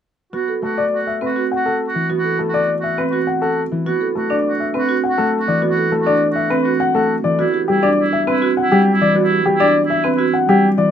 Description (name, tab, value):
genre	classical, minimalist pattern music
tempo	102 BPM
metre	3/4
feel	straight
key	A dorian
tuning	A4 = 440 Hz
part	warm oboe	second line	0.3-10.7 s	E4 to F#4	-23 LUFS	right 3 dB	none
part	concert harp	accompaniment	0.3-10.9 s	E3 to B3	-22 LUFS	left 2 dB	none
part	marimba with medium hard mallets	arpeggios	0.3-10.4 s	C4 to A4	-20 LUFS	right 8 dB	none
part	warm grand piano	melody	0.6-10.9 s	G4 to F#5	-18 LUFS	left 4 dB	none
room	little or no reverb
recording	close, detailed microphones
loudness	-15 LUFS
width	side -9 dB against mid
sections	0.3-10.9 A section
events	none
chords	0.3 Asus2; 7.4 Cmaj7 (rootless)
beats	| 0.33 0.92 1.51 | 2.10 2.69 3.27 | 3.86 4.45 5.04 | 5.63 6.22 6.80 | 7.39 7.98 8.57 | 9.16 9.74 10.33